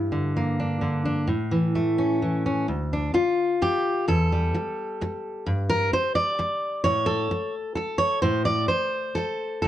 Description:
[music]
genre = folk, solo fingerstyle acoustic guitar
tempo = 129 BPM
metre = 3/4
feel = straight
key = D minor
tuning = A4 = 440 Hz
[part]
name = fingerpicked steel-string acoustic guitar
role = solo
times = 0.0-9.7 s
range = D2 to D5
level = -22 LUFS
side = equal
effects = none
[sound]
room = moderate studio reverb, RT60 0.6 s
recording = dark, warm production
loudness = -22 LUFS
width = side -12 dB against mid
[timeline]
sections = 0.0-2.7 A section; 2.7-9.7 B section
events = none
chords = 0.0 Gm; 1.3 A; 2.7 Dm; 4.1 Em; 5.5 G5; 6.9 N.C.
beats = 0.35 0.82 | 1.28 1.75 2.21 | 2.68 3.15 3.61 | 4.08 4.54 5.00 | 5.47 5.93 6.39 | 6.85 7.32 7.78 | 8.25 8.71 9.18 | 9.64

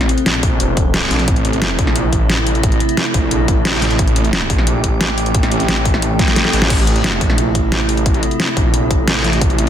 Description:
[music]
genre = dark technical drum and bass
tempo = 177 BPM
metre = 4/4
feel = straight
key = A phrygian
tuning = A4 = 442 Hz
[part]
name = metallic inharmonic drone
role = sustained chords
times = 0.0-9.7 s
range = C3 to G4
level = -20 LUFS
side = right 1 dB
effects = chorus, built-in reverb, sidechain pumping
[part]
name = wide detuned saw bass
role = bass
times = 0.0-9.7 s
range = E1 to Bb1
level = -18 LUFS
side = equal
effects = chorus
[part]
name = dubstep drum kit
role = drums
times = 0.0-9.7 s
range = crash cymbal, hi-hat, snare drum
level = -18 LUFS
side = equal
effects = none
[part]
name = electronic kick drum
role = drums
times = 0.4-9.5 s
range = none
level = -17 LUFS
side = equal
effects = none
[part]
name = swell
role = sound effects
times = 6.1-6.7 s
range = none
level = -25 LUFS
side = left 1 dB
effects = none
[sound]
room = light reverb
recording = dense, heavily limited modern master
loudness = -13 LUFS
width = side -10 dB against mid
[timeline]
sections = 0.0-9.7 A section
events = swell 6.1-6.7; drum fill 6.2-6.7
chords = 0.0 Am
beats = 0.26 0.60 0.94 | 1.28 1.62 1.96 2.30 | 2.63 2.97 3.31 3.65 | 3.99 4.33 4.67 5.01 | 5.35 5.69 6.03 6.36 | 6.70 7.04 7.38 7.72 | 8.06 8.40 8.74 9.08 | 9.41

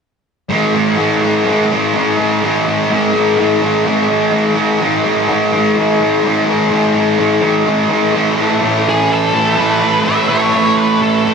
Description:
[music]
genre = rock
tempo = 126 BPM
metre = 4/4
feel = straight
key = unclear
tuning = A4 = 440 Hz
[part]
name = fuzz guitar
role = riff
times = 0.5-11.3 s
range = A2 to A3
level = -12 LUFS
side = equal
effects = distortion, wide subtle chorus
[part]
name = octave-fuzz lead guitar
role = melody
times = 8.9-11.3 s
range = G#4 to E5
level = -15 LUFS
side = equal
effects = distortion, analog delay
[sound]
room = wet lush hall reverb, RT60 2.5 s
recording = dreamy mix soaked in reverb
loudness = -11 LUFS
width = side -6 dB against mid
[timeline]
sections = 0.5-8.2 A section; 8.2-11.3 B section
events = none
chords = 0.5 A5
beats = | 0.51 0.99 1.47 1.95 | 2.42 2.90 3.38 3.86 | 4.34 4.81 5.29 5.77 | 6.25 6.72 7.20 7.68 | 8.16 8.63 9.11 9.59 | 10.07 10.54 11.02

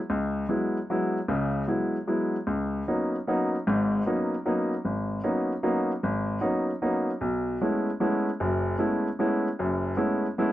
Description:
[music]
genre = jazz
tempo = 152 BPM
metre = 3/4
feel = swing 67% on 8ths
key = C# minor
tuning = A4 = 439 Hz
[part]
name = clear baby grand piano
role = solo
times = 0.1-10.5 s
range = F#1 to Fb4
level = -25 LUFS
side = equal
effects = none
[sound]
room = little or no reverb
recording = dry, close 1970s-style studio recording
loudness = -25 LUFS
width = side -14 dB against mid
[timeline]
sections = 0.0-2.5 A section; 2.5-10.5 B section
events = none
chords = 0.0 Gb9sus4; 2.5 C#13sus4; 7.2 B13sus4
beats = | 0.09 0.49 0.88 | 1.28 1.68 2.07 | 2.47 2.86 3.26 | 3.65 4.05 4.45 | 4.84 5.24 5.63 | 6.03 6.42 6.82 | 7.21 7.61 8.01 | 8.40 8.80 9.19 | 9.59 9.98 10.38

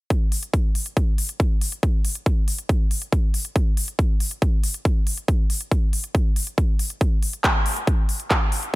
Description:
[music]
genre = trance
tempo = 139 BPM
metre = 4/4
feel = straight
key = none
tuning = none
[part]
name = big-room dance drum kit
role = drums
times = 0.1-8.7 s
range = handclaps, hi-hat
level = -25 LUFS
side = equal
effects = overdrive
[part]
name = electronic kick drum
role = drums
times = 0.1-8.4 s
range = none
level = -20 LUFS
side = equal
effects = overdrive
[sound]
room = little or no reverb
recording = none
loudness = -20 LUFS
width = side -19 dB against mid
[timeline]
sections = 0.1-8.8 A section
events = none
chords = none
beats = | 0.10 0.54 0.97 1.40 | 1.83 2.26 2.69 3.12 | 3.56 3.99 4.42 4.85 | 5.28 5.71 6.15 6.58 | 7.01 7.44 7.87 8.30

